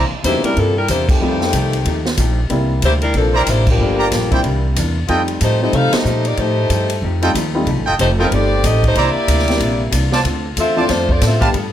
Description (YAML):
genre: jazz, big band swing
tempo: 186 BPM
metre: 4/4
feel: swing 62% on 8ths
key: unclear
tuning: A4 = 440 Hz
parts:
  - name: hollow-body jazz guitar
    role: accompaniment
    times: 0.0-11.7 s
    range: G2 to A4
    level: -26 LUFS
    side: left 2 dB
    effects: none
  - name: clear trumpet section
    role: stabs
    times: 0.0-0.1, 3.3-5.2, 7.2-11.5 s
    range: E4 to Bb5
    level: -20 LUFS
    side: right 2 dB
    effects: none
  - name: upright bass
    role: bass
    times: 0.0-11.7 s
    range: F1 to C3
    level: -18 LUFS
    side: equal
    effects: none
  - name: warm saxophone section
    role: melody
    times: 0.2-11.4 s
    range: Eb3 to F5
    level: -18 LUFS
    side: left 1 dB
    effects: none
  - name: warm baby grand piano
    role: accompaniment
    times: 0.2-11.5 s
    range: F3 to A4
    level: -22 LUFS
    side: left 1 dB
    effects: none
  - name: swinging big-band drum kit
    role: drums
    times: 0.2-11.6 s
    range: crash cymbal, hi-hat, kick drum, ride cymbal, snare drum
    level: -22 LUFS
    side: equal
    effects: none
room: moderate large studio reverb, RT60 1.0 s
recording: none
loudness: -14 LUFS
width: side -11 dB against mid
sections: 0.0-11.7 A section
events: band accent 1.0, 3.6, 5.9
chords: 0.0 C9; 1.2 F9; 2.5 C9; 3.8 Gm7; 4.4 C9; 5.1 F9; 9.0 C9; 10.2 Dm7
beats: 0.24 0.56 0.88 | 1.21 1.53 1.85 2.18 | 2.50 2.82 3.15 3.47 | 3.79 4.12 4.44 4.76 | 5.08 5.41 5.73 6.05 | 6.38 6.70 7.02 7.34 | 7.67 7.99 8.31 8.63 | 8.96 9.28 9.60 9.92 | 10.24 10.57 10.89 11.21 | 11.54